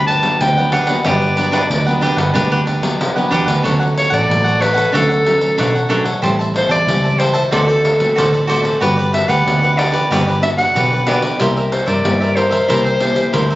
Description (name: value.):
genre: samba and choro.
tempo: 93 BPM.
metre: 4/4.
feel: straight.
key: G major, D major from 3.6 s.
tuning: A4 = 440 Hz.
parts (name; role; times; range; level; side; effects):
clear clarinet; melody; 0.0-13.6 s; A4 to A5; -16 LUFS; equal; plate reverb.
cavaquinho; accompaniment; 0.0-13.6 s; D4 to A5; -19 LUFS; right 1 dB; none.
nylon-string guitar; accompaniment; 0.0-13.6 s; G2 to G4; -22 LUFS; left 1 dB; none.
vintage muted fingered electric bass; bass; 0.0-13.6 s; G1 to G2; -20 LUFS; right 1 dB; none.
pandeiro; percussion; 0.1-13.6 s; none; -21 LUFS; left 1 dB; none.
room: moderate studio reverb, RT60 0.7 s.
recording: recorded on a phone in the room, club reverb, nothing above 7.6 kHz.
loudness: -13 LUFS.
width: side -16 dB against mid.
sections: 0.0-3.6 A section; 3.6-13.6 B section.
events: clarinet solo 0.0-3.6.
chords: 0.0 Gmaj7; 3.6 Dmaj7; 6.2 Am7; 7.5 D7; 8.8 Gmaj7; 11.4 C7.